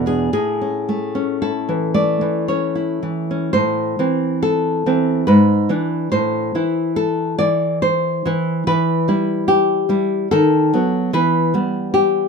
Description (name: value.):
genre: romantic piece for solo classical guitar.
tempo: 54-76 BPM.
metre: 3/4.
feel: rubato.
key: A major, A minor from 3.5 s.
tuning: A4 = 440 Hz.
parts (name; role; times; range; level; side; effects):
nylon-string guitar; solo; 0.0-12.3 s; E2 to D5; -16 LUFS; equal; none.
room: moderate studio reverb, RT60 0.5 s.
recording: minimal, uncompressed stereo recording.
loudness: -16 LUFS.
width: side -5 dB against mid.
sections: 0.0-3.5 A section; 3.5-12.3 B section.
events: none.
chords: 0.3 A; 3.5 Am; 5.3 E7/G#; 6.1 Am; 8.7 Em; 10.3 B7/D#; 11.1 Em.